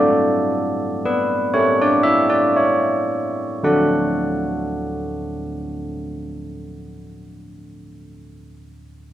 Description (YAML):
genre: classical, tune for church bells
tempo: 54-66 BPM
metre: 4/4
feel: straight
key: D major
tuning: A4 = 440 Hz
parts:
  - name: carillon bells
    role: solo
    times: 0.0-7.6 s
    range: D3 to F#5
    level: -18 LUFS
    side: equal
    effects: none
room: moderate scoring stage reverb, RT60 1.7 s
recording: none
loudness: -17 LUFS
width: side -12 dB against mid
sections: 0.0-3.7 A section; 3.7-8.0 B section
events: slowing down 0.0-3.7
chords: 0.0 D/A; 1.5 A7; 3.7 D